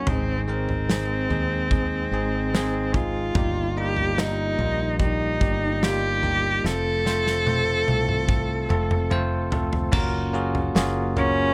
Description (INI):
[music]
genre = pop ballad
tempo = 73 BPM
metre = 4/4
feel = straight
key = unclear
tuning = A4 = 439 Hz
[part]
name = warm cello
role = melody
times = 0.0-11.5 s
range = C4 to A4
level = -28 LUFS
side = equal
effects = none
[part]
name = bell-like tine electric piano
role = accompaniment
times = 0.0-11.5 s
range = G2 to C5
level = -30 LUFS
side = equal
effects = none
[part]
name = fretless electric bass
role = bass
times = 0.0-11.5 s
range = F1 to Eb2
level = -30 LUFS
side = equal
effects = none
[part]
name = natural country drum kit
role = drums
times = 0.1-11.4 s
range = crash cymbal, kick drum, snare drum, toms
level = -28 LUFS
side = equal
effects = none
[sound]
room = small room ambience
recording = none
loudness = -24 LUFS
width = mono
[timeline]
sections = 0.0-9.9 A section; 9.9-11.5 B section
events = drum fill 6.6-9.9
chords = 0.1 Ab; 3.4 Eb/G; 6.6 F; 9.9 Gbmaj7